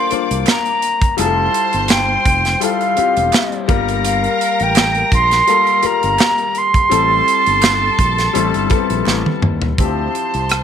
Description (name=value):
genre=lush 1970s-style soul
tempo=84 BPM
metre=4/4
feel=swing 54% on 16ths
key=F major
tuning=A4 = 442 Hz
part: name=concert flute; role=melody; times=0.0-10.6 s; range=F5 to C6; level=-16 LUFS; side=right 2 dB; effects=none
part: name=rich studio string section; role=second line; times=0.0-10.6 s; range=A4 to D6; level=-24 LUFS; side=left 3 dB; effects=none
part: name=warm baby grand piano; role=accompaniment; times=0.0-10.6 s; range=E3 to C5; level=-21 LUFS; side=left 12 dB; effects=none
part: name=fingered electric bass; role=bass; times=0.1-10.6 s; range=E1 to Eb2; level=-21 LUFS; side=right 1 dB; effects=none
part: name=modern studio drum kit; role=drums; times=0.1-10.6 s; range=hi-hat, kick drum, rim click, snare drum, toms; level=-17 LUFS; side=right 1 dB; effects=none
part: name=group handclap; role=percussion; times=0.5-9.2 s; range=none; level=-30 LUFS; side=right 14 dB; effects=none
room=wet spring reverb, RT60 1.8 s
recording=1960s-style stereo with parts hard left and right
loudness=-13 LUFS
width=side -8 dB against mid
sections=0.0-9.8 A section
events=drum fill 9.1-9.8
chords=0.0 C9sus4; 1.2 Fmaj9; 3.7 Gm9; 6.9 Am7; 9.8 Dm11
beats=0.47 | 1.18 1.90 2.62 3.33 | 4.05 4.76 5.48 6.20 | 6.91 7.63 8.35 9.07 | 9.78 10.50